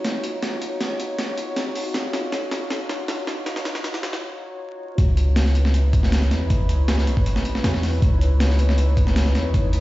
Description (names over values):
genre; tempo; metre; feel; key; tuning
drum and bass, jungle; 158 BPM; 4/4; straight; unclear; A4 = 440 Hz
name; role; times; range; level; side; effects
warbly tape-like pad; sustained chords; 0.0-9.8 s; D#4 to C#5; -29 LUFS; left 1 dB; chorus, built-in reverb
breakbeat sampler-style drum kit; drums; 0.0-9.8 s; hi-hat, kick drum, snare drum; -23 LUFS; equal; overdrive
long sustained 808-style bass; bass; 5.0-9.8 s; B1 to E2; -19 LUFS; equal; tube saturation
room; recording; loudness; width
light reverb; played on a big sound system in a bare room, stone room reverb, vinyl crackle, high-pass filter, nothing above 7.6 kHz; -19 LUFS; side -17 dB against mid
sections
0.0-5.0 A section; 5.0-9.8 B section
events
build-up 0.0-5.0; drum fill 0.0-4.2; break 4.2-5.0; drop 5.0-9.8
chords
0.0 D#m9; 5.0 C#m9